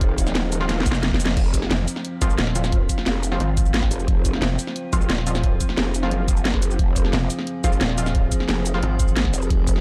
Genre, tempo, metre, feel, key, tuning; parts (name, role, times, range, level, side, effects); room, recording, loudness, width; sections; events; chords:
dark technical drum and bass; 177 BPM; 4/4; straight; F minor; A4 = 440 Hz
metallic inharmonic drone; sustained chords; 0.0-9.8 s; F3 to Ab4; -32 LUFS; equal; chorus, built-in reverb, sidechain pumping
growl bass; bass; 0.0-9.8 s; Eb1 to Ab1; -26 LUFS; equal; chorus, overdrive
drum and bass drum kit; drums; 0.0-9.8 s; cabasa, crash cymbal, hi-hat, snare drum; -28 LUFS; equal
electronic kick drum; drums; 0.0-9.7 s; -23 LUFS; equal
orchestra-hit-like synth stab; stabs; 0.6-9.8 s; F3 to F4; -33 LUFS; equal; built-in reverb, digital delay
pulsing pluck wobble bass; bass; 0.9-9.3 s; Eb1 to Ab1; -26 LUFS; equal; chorus
little or no reverb; dark, warm production; -21 LUFS; mono
0.0-1.4 A section; 1.4-9.8 A section
drop 0.0-1.4, 1.4-9.8; drum fill 0.7-1.4
0.0 F5